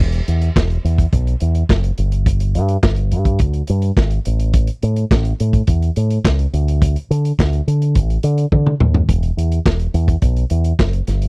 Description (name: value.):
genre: disco.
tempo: 106 BPM.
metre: 4/4.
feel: straight.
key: unclear.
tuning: A4 = 437 Hz.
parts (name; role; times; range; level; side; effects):
fingered electric bass with an envelope filter; bass; 0.0-11.3 s; E1 to D3; -15 LUFS; equal; none.
vintage drum kit; drums; 0.1-11.3 s; handclaps, hi-hat, kick drum, snare drum, toms; -16 LUFS; equal; none.
room: little or no reverb.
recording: dry, close 1970s-style studio recording.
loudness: -14 LUFS.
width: side -31 dB against mid.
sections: 0.0-11.3 A section.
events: drum fill 8.5-9.1.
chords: none.